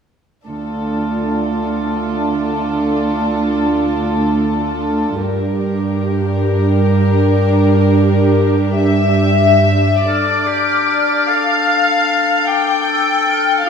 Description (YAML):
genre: cinematic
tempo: 50 BPM (dotted quarters)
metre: 6/8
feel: rubato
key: D minor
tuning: A4 = 442 Hz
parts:
  - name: warm studio violin section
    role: melody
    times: 0.5-13.7 s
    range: A4 to G5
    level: -18 LUFS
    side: left 5 dB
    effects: none
  - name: dark studio viola section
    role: accompaniment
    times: 0.5-9.8 s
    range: D4 to G4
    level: -18 LUFS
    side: right 2 dB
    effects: none
  - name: dark studio cello section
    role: bass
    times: 0.5-9.8 s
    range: D2 to G2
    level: -16 LUFS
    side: right 3 dB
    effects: none
  - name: mellow clarinet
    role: second line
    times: 10.0-13.7 s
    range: D4 to F4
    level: -24 LUFS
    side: left 7 dB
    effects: none
  - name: bright large flute ensemble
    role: second line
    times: 10.1-13.7 s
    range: D6 to F6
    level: -18 LUFS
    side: equal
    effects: none
  - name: warm oboe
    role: second line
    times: 10.1-13.7 s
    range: G4 to A4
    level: -20 LUFS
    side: left 1 dB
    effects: none
room: wet scoring stage reverb, RT60 1.7 s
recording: heard from further back in the room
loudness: -13 LUFS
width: side -6 dB against mid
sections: 0.5-10.1 A section; 10.1-13.7 B section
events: none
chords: 0.5 Dm; 5.2 Gm; 10.1 Dm